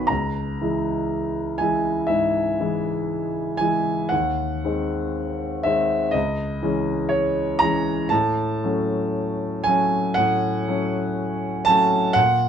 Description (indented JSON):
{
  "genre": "classical, romantic nocturne for solo piano",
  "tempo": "60 BPM",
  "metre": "4/4",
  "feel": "rubato",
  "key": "unclear",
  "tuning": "A4 = 440 Hz",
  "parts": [
    { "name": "warm concert grand piano", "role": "solo", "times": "0.0-12.5 s", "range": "B1 to B5", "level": "-20 LUFS", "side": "equal", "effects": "none" }
  ],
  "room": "light reverb",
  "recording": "dark, warm production",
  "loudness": "-20 LUFS",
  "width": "side -8 dB against mid",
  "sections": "0.0-12.5 A section",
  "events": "none",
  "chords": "0.1 C#m; 4.1 G#7/D#; 6.1 C#m; 8.1 F#m/A",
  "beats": "| 0.10 1.11 2.11 3.11 | 4.12 5.16 6.15 7.12 | 8.12 9.16 10.18 11.18 | 12.17"
}